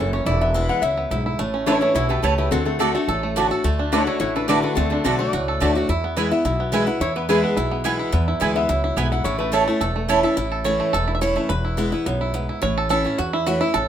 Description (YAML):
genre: bluegrass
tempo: 214 BPM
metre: 4/4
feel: straight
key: A major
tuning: A4 = 440 Hz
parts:
  - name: bluegrass banjo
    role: melody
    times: 0.0-13.9 s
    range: E3 to E5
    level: -25 LUFS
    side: right 3 dB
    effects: none
  - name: lap resonator guitar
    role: second line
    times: 0.0-10.1 s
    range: C4 to F#5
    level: -25 LUFS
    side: left 4 dB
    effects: none
  - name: picked steel-string acoustic guitar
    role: accompaniment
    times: 0.0-13.9 s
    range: E2 to F#4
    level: -24 LUFS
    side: left 1 dB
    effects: none
  - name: upright bass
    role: bass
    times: 0.0-13.9 s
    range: E1 to E2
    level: -25 LUFS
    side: equal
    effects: none
  - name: mandolin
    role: stabs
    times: 1.7-10.2 s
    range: A3 to A5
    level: -23 LUFS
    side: right 6 dB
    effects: none
room: moderate studio reverb, RT60 0.7 s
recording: minimal, uncompressed stereo recording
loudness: -18 LUFS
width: side -10 dB against mid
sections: 0.0-10.4 A section; 10.4-13.9 A section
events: resonator guitar played with a steel bar solo 0.0-10.4; five-string banjo solo 10.4-13.9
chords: 0.3 E; 1.4 A; 2.5 D; 5.9 E; 9.3 A; 11.5 E; 12.6 A